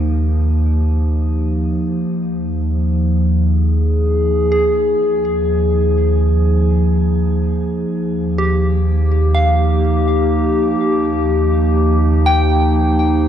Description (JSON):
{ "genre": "ambient", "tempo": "62 BPM", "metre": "3/4", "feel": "straight", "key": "Eb major", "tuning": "A4 = 439 Hz", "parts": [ { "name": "warbly tape-like pad", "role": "sustained chords", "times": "0.0-13.3 s", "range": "F3 to Ab4", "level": "-17 LUFS", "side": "left 1 dB", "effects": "chorus, built-in reverb, shimmer reverb" }, { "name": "soft synth bell", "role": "arpeggios", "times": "0.0-13.3 s", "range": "G4 to G5", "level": "-22 LUFS", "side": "equal", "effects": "chorus, phaser, ping-pong delay, shimmer reverb" }, { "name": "warm sub bass", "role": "bass", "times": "0.0-13.3 s", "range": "Eb2", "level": "-16 LUFS", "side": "right 1 dB", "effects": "tube saturation" } ], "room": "moderate scoring stage reverb, RT60 2.1 s", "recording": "none", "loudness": "-14 LUFS", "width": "side -9 dB against mid", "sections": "0.0-13.3 A section", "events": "fade-in on synth bell 0.0-13.3", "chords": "0.0 Ebadd9; 2.1 Ebsus24; 7.9 Ebadd9" }